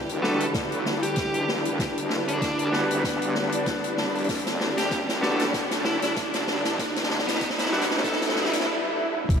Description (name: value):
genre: glitch hop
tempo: 96 BPM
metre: 4/4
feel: swing 56% on 16ths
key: E minor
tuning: A4 = 441 Hz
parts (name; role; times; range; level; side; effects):
- dark studio string section; sustained chords; 0.0-9.4 s; D3 to E4; -30 LUFS; left 1 dB; vintage 12-bit sampler grit, sidechain pumping
- wobble bass; bass; 0.0-9.4 s; E1 to D2; -35 LUFS; equal; none
- riser and swell; sound effects; 0.7-9.3 s; none; -32 LUFS; right 2 dB; none
- granular cloud pad; texture; 0.0-8.7 s; E4 to B4; -34 LUFS; equal; built-in reverb, sidechain pumping
- swinging big-band drum kit; drums; 0.1-9.4 s; hi-hat, snare drum; -29 LUFS; left 1 dB; none
- dark smooth lead guitar; melody; 0.2-8.5 s; B3 to A4; -31 LUFS; equal; overdrive, tape echo
- clean electric guitar; stabs; 0.2-8.7 s; G3 to F#4; -30 LUFS; equal; vintage 12-bit sampler grit, sidechain pumping, tape echo
- electronic kick drum; drums; 0.5-9.4 s; none; -28 LUFS; equal; none
room: wet cathedral reverb, RT60 5.8 s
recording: dreamy mix soaked in reverb, vinyl crackle, high-pass filter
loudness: -23 LUFS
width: side -7 dB against mid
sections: 0.0-9.3 A section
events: build-up 0.0-9.3; drum fill 0.0-8.7; riser 0.7-8.7; swell 8.0-9.3; break 8.7-9.3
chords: 0.0 Em7